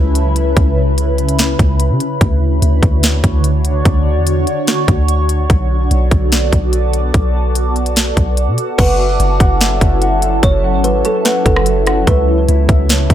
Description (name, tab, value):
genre	hip hop, atmospheric cloud-rap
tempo	146 BPM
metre	4/4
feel	half-time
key	F# minor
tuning	A4 = 440 Hz
part	shimmering ambient pad	sustained chords	0.0-13.1 s	C#3 to D5	-18 LUFS	equal	chorus, built-in reverb, phaser, sidechain pumping
part	soft 808-style bass	bass	0.0-13.1 s	F#1 to C#3	-14 LUFS	equal	none
part	trap drum kit	drums	0.2-13.1 s	crash cymbal, hi-hat, kick drum, rim click, snare drum	-14 LUFS	equal	none
part	kalimba	melody	8.8-12.9 s	A4 to C#5	-18 LUFS	right 2 dB	low-pass filter, tape echo
part	mellow electric guitar	arpeggios	8.8-13.1 s	E4 to F#5	-21 LUFS	left 2 dB	low-pass filter, tape echo
room	light reverb, digital ambience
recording	none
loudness	-11 LUFS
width	side -11 dB against mid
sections	0.0-8.8 A section; 8.8-13.1 B section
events	none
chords	0.0 C#m7; 2.2 Dmaj7; 5.5 Bm7; 8.8 F#m7; 12.1 C#m7